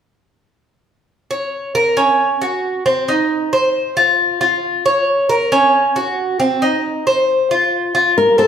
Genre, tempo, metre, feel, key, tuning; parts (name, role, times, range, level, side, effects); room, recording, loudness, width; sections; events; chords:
latin; 136 BPM; 4/4; straight; Bb minor; A4 = 440 Hz
Cuban tres; arpeggios; 1.3-8.5 s; C4 to Db5; -14 LUFS; equal
nylon-string guitar; melody; 8.2-8.5 s; A4 to Bb4; -10 LUFS; left 2 dB
wet large studio reverb, RT60 1.4 s; heard from further back in the room; -13 LUFS; side -8 dB against mid
1.1-8.2 A section
1.1 Bbm; 2.0 Dbsus4; 2.9 Cm; 3.7 F5; 4.6 Bbm; 5.5 Dbsus4; 6.4 Cm; 7.3 F5